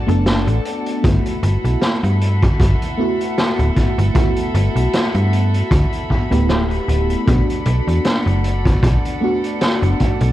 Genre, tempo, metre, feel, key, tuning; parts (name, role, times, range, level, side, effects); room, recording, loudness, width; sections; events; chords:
vaporwave; 77 BPM; 4/4; swing 55% on 16ths; G major; A4 = 440 Hz
mellow FM electric piano; accompaniment; 0.0-10.3 s; A3 to A4; -22 LUFS; equal; analog chorus, tape echo
warm chamber string section; sustained chords; 0.0-10.3 s; A4 to B5; -27 LUFS; equal
slap-like FM bass; bass; 0.1-10.3 s; D1 to G2; -16 LUFS; equal
raw garage drum kit; drums; 0.1-10.3 s; hi-hat, snare drum; -23 LUFS; equal
kick drum; drums; 1.0-10.2 s; -17 LUFS; equal
small room reverb; cassette tape; -14 LUFS; side -14 dB against mid
0.0-10.3 A section
0.0 Bm7; 1.0 Gmaj13; 7.3 Bm7